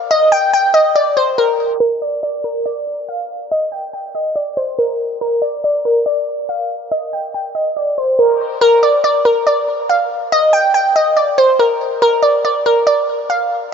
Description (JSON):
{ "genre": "hip hop", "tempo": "141 BPM", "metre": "4/4", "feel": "half-time", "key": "unclear", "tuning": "A4 = 440 Hz", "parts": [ { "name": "glassy wavetable pluck", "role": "solo", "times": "0.0-13.7 s", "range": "Bb4 to G5", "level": "-13 LUFS", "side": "equal", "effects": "chorus" } ], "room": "moderate huge ambient reverb, RT60 7.1 s", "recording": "low-pass filter, nothing above 7.6 kHz", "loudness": "-13 LUFS", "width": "side -7 dB against mid", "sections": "0.0-1.8 A section; 1.8-8.6 B section; 8.6-13.7 C section", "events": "filter sweep 1.8-8.6", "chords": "none" }